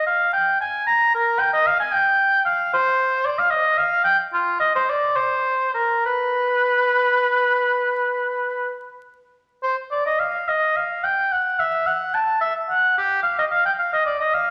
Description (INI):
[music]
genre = classical, baroque-style fantasia for unaccompanied oboe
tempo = 64-77 BPM (dotted quarters)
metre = 12/8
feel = rubato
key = unclear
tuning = A4 = 440 Hz
[part]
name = warm oboe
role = solo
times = 0.0-14.5 s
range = F4 to Bb5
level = -20 LUFS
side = equal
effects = none
[sound]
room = wet recital hall reverb, RT60 1.5 s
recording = vinyl crackle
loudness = -20 LUFS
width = mono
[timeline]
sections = 0.0-9.6 A section; 9.6-14.5 B section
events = none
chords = none